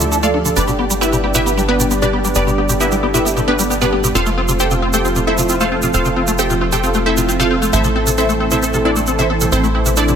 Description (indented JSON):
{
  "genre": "uplifting trance",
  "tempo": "134 BPM",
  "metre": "4/4",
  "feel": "straight",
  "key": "unclear",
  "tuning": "A4 = 437 Hz",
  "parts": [
    { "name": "wide unison pluck", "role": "melody", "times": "0.0-10.2 s", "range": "B3 to G5", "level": "-17 LUFS", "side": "right 1 dB", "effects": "phaser, tape echo" },
    { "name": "lush unison pad", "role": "sustained chords", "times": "0.0-10.2 s", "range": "E3 to D5", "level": "-21 LUFS", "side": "equal", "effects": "chorus, phaser" },
    { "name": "liquid acid bass", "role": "arpeggios", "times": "0.0-10.1 s", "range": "B2 to D4", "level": "-20 LUFS", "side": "left 3 dB", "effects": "wide subtle chorus, tape echo" },
    { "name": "tight sequencer bass", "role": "bass", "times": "0.0-10.2 s", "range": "F1 to D2", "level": "-21 LUFS", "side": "equal", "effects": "none" },
    { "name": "egg shaker", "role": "percussion", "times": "0.0-10.2 s", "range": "none", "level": "-23 LUFS", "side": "right 6 dB", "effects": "none" }
  ],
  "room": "light reverb",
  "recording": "none",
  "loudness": "-13 LUFS",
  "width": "side -8 dB against mid",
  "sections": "0.0-10.2 A section",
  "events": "filter sweep on acid bass 0.0-10.2",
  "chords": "0.0 Dm; 0.6 G; 4.1 F; 7.7 Am"
}